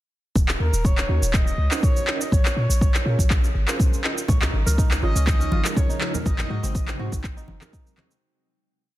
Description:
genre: afro house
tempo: 122 BPM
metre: 4/4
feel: straight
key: Eb dorian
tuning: A4 = 441 Hz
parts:
  - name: warm 808-style bass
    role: bass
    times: 0.4-7.6 s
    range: Eb1 to Bb2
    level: -23 LUFS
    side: equal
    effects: sidechain pumping
  - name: electronic cabasa and handclaps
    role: drums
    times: 0.4-8.2 s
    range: none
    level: -27 LUFS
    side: equal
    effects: overdrive
  - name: electronic kick drum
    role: drums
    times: 0.4-7.8 s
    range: none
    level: -21 LUFS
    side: equal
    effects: overdrive
  - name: expressive portamento lead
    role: melody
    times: 0.6-7.0 s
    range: Bb4 to Eb5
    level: -31 LUFS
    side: equal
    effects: chorus, digital delay
  - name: warm analog keys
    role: stabs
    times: 1.1-8.1 s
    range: C4 to Eb5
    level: -33 LUFS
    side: right 4 dB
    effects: chorus, sidechain pumping, digital delay
  - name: ethereal airy pad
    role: sustained chords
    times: 5.1-8.2 s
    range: C3 to Eb4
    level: -34 LUFS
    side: right 1 dB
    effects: ensemble chorus, built-in reverb, sidechain pumping
  - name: kora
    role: arpeggios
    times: 4.3-9.0 s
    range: C4 to Db5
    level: -34 LUFS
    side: right 2 dB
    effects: sidechain pumping, digital delay
  - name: congas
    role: percussion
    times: 4.3-8.1 s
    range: none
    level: -30 LUFS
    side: right 1 dB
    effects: none
room: little or no reverb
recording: dense, heavily limited modern master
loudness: -19 LUFS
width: side -15 dB against mid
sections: 0.4-8.2 groove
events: fade-out 5.6-8.2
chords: 0.4 Ebm7; 2.3 Bbm7; 4.3 Dbadd9; 6.3 Ab7

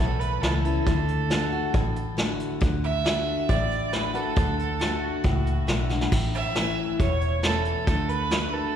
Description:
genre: honky-tonk and classic country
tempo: 137 BPM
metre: 4/4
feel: straight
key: unclear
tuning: A4 = 441 Hz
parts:
  - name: clear fiddle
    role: second line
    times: 0.0-8.8 s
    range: F#4 to E5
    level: -29 LUFS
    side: right 5 dB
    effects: none
  - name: picked steel-string acoustic guitar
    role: accompaniment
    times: 0.0-8.7 s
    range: E2 to F#4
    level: -29 LUFS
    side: left 3 dB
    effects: none
  - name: vintage muted fingered electric bass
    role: bass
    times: 0.0-8.6 s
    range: E1 to D2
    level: -28 LUFS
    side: equal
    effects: none
  - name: vintage brush drum kit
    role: drums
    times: 0.2-8.4 s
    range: crash cymbal, hi-hat, kick drum, snare drum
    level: -27 LUFS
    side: equal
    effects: none
room: wet concert hall reverb, RT60 1.9 s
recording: recorded in a church or concert hall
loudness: -22 LUFS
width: side -9 dB against mid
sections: 0.0-8.8 A section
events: fiddle solo 0.0-8.8; drum fill 5.9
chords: 0.0 A; 0.9 D; 6.1 A; 7.9 D

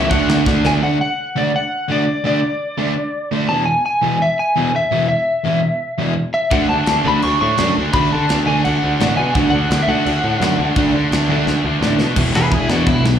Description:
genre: punk rock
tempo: 169 BPM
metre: 4/4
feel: straight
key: unclear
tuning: A4 = 441 Hz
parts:
  - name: lightly driven lead guitar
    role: melody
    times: 0.0-13.0 s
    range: D4 to C#6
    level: -19 LUFS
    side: left 1 dB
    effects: slapback echo
  - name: high-gain distorted guitar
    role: riff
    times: 0.0-0.8, 6.5-13.2 s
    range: E2 to D4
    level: -22 LUFS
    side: left 1 dB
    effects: distortion, slapback echo
  - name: overdriven semi-hollow guitar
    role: riff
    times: 0.0-13.2 s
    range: E2 to D4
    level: -21 LUFS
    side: right 7 dB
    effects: slapback echo
  - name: sludgy distorted guitar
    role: riff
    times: 0.0-13.2 s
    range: E2 to D4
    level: -23 LUFS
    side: left 8 dB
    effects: overdrive, slapback echo
  - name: fuzz picked electric bass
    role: bass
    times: 0.0-0.8, 6.5-13.2 s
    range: E1 to D3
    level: -19 LUFS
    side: equal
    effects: overdrive
  - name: tight metal drum kit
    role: drums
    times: 0.1-0.7, 6.5-13.1 s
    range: crash cymbal, kick drum, snare drum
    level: -22 LUFS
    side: equal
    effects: none
room: light reverb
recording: live gig heard through the venue's PA, club reverb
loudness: -14 LUFS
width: side -9 dB against mid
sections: 0.8-12.2 A section; 12.2-13.2 B section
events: drum fill 0.5-0.8, 11.5-12.2; half time 0.8-12.2; lead electric guitar solo 12.2-13.2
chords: 0.1 D; 3.5 E; 6.5 D; 12.2 E

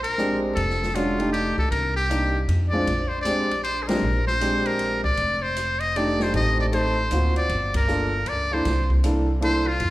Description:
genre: jazz, small-group swing and bop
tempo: 156 BPM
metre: 3/4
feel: swing 64% on 8ths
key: F mixolydian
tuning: A4 = 440 Hz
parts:
  - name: trumpet with metal mute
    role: melody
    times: 0.0-9.9 s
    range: F4 to Eb5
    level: -25 LUFS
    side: left 1 dB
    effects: none
  - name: upright bass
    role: bass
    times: 0.0-9.9 s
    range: F1 to F2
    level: -26 LUFS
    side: equal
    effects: none
  - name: open jazz drum kit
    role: drums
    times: 0.0-9.9 s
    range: hi-hat, kick drum, ride cymbal, snare drum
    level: -31 LUFS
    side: equal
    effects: none
  - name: warm grand piano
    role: accompaniment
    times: 0.2-9.6 s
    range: Ab3 to A4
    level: -26 LUFS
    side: equal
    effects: none
room: wet recital hall reverb, RT60 1.5 s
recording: recorded in a church or concert hall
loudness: -20 LUFS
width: side -16 dB against mid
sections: 0.0-9.9 A section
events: band accent 3.8, 7.7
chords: 0.0 Bb13; 0.6 F13; 1.7 Cm7; 2.5 F5; 2.9 Bb13; 5.2 F13; 6.3 Am7b5; 7.1 D7alt; 7.5 Gm7; 8.6 C13

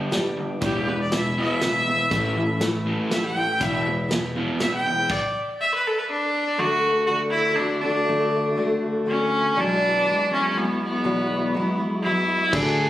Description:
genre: folk rock and heartland rock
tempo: 121 BPM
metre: 3/4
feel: straight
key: E mixolydian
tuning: A4 = 439 Hz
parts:
  - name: picked steel-string acoustic guitar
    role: accompaniment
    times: 0.0-12.9 s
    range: E2 to G4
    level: -26 LUFS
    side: left 2 dB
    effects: none
  - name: tonewheel organ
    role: sustained chords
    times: 0.0-12.9 s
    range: D3 to A4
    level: -34 LUFS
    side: equal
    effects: none
  - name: crunchy overdriven guitar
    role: riff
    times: 0.0-5.1, 12.5-12.9 s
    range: E2 to A3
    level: -27 LUFS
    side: equal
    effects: none
  - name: vintage drum kit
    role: drums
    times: 0.1-5.2, 12.5-12.6 s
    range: crash cymbal, hi-hat, kick drum, snare drum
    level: -28 LUFS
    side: right 1 dB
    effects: none
  - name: bright viola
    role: melody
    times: 0.6-12.9 s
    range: B3 to G5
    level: -23 LUFS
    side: equal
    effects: digital delay
  - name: picked electric bass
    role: bass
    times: 0.6-4.4, 12.5-12.9 s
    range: E1 to D2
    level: -27 LUFS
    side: equal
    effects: none
room: light reverb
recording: recorded on a phone in the room, studio reverb, compression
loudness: -20 LUFS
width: side -13 dB against mid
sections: 0.0-6.6 A section; 6.6-12.9 B section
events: viola solo 0.0-6.6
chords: 0.0 G; 0.6 E; 2.1 A; 3.6 E; 5.1 N.C.; 6.6 D; 9.6 Eadd9

